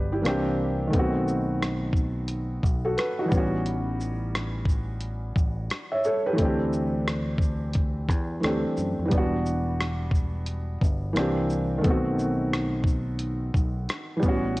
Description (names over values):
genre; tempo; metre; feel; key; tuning
lo-fi hip hop; 88 BPM; 4/4; swing 62% on 16ths; unclear; A4 = 440 Hz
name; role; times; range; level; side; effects
felt-muted upright piano; accompaniment; 0.0-14.6 s; D#3 to E5; -27 LUFS; equal; cassette tape
fingered electric bass; bass; 0.0-14.6 s; E1 to F#2; -30 LUFS; equal; none
dusty soul sampler-style drum kit; drums; 0.3-14.6 s; hi-hat, kick drum, rim click, shaker; -26 LUFS; equal; vintage 12-bit sampler grit, cassette tape
room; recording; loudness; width
little or no reverb; home recording on cassette; -24 LUFS; side -20 dB against mid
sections
0.0-14.6 A section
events
none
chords
0.3 C9; 0.9 B7b9; 3.3 A13; 6.4 D9sus4; 9.1 Em9; 11.2 C9; 11.8 B7b9